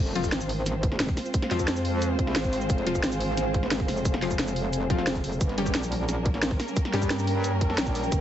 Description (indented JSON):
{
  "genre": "dark technical drum and bass",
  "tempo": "177 BPM",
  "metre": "4/4",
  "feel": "straight",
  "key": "F minor",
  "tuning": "A4 = 442 Hz",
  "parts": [
    { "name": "warm symphonic string section", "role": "sustained chords", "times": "0.0-8.2 s", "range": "G3 to C5", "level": "-33 LUFS", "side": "right 1 dB", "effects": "sidechain pumping" },
    { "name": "metallic wobble bass", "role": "bass", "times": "0.0-8.2 s", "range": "F1 to G2", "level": "-30 LUFS", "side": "equal", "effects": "chorus, tube saturation" },
    { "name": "impact", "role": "sound effects", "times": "0.0-1.3 s", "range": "none", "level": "barely audible", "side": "none", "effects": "none" },
    { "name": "deep dark ambient pad", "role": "texture", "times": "0.0-8.2 s", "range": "C4 to Bb5", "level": "-33 LUFS", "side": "right 1 dB", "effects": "chorus, built-in reverb, sidechain pumping" },
    { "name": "drum and bass drum kit", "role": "drums", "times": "0.1-8.2 s", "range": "hi-hat, shaker, snare drum", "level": "-30 LUFS", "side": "equal", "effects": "none" },
    { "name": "orchestra-hit-like synth stab", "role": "stabs", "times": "0.2-7.1 s", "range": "F3 to G4", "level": "-32 LUFS", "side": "left 4 dB", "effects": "built-in reverb, ping-pong delay" },
    { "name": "electronic kick drum", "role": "drums", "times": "0.2-8.2 s", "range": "none", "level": "-27 LUFS", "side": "equal", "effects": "none" }
  ],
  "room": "light reverb",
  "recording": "heavily compressed radio sound, nothing above 8.0 kHz",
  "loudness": "-24 LUFS",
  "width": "side -11 dB against mid",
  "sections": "0.0-8.2 A section",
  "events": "drop 0.0-8.2; impact 0.0-1.3",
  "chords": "0.0 Fm; 5.4 Gdim"
}